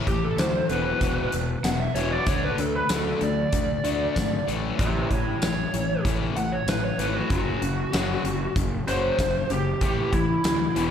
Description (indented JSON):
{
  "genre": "classic rock",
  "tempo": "96 BPM",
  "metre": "4/4",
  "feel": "straight",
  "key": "A major",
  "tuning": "A4 = 440 Hz",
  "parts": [
    { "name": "distorted electric guitar", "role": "riff", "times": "0.0-10.9 s", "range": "E2 to D4", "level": "-28 LUFS", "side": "left 6 dB", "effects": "distortion, slapback echo" },
    { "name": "lead guitar through a small cranked amp", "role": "melody", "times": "0.1-10.9 s", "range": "E4 to F#5", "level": "-27 LUFS", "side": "right 2 dB", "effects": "overdrive, slapback echo" },
    { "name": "fuzz fingered electric bass", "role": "bass", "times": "0.1-10.9 s", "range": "E1 to D2", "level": "-30 LUFS", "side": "right 1 dB", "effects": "overdrive" },
    { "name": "big rock drum kit", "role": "drums", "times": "0.1-10.9 s", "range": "hi-hat, kick drum, snare drum, tambourine", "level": "-28 LUFS", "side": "equal", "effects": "none" }
  ],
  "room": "moderate lush hall reverb, RT60 1.8 s, small room ambience",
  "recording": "big arena sound",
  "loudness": "-22 LUFS",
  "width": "side -8 dB against mid",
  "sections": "0.0-10.9 A section",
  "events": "lead electric guitar solo 0.0-10.9",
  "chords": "0.0 A5; 0.7 E5; 2.3 D5; 4.5 A; 7.3 F#5; 9.8 A5"
}